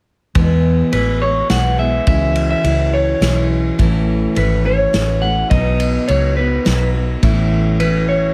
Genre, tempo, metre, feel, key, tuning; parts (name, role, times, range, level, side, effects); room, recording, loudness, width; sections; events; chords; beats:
honky-tonk and classic country; 105 BPM; 3/4; straight; E major; A4 = 440 Hz
picked steel-string acoustic guitar; accompaniment; 0.3-8.3 s; E2 to G#4; -21 LUFS; equal
vintage muted fingered electric bass; bass; 0.4-8.3 s; G#1 to E2; -20 LUFS; equal
unplugged drum kit; drums; 0.4-7.9 s; kick drum, ride cymbal, snare drum; -24 LUFS; equal
electric guitar through a small old amp; melody; 0.9-8.3 s; B4 to F#5; -21 LUFS; equal
little or no reverb; -16 LUFS; mono
0.4-8.3 A section
0.4 E; 2.1 C#m; 3.8 A; 5.5 B; 7.2 A
| 0.35 0.93 1.50 | 2.07 2.65 3.22 | 3.79 4.36 4.93 | 5.51 6.08 6.65 | 7.23 7.80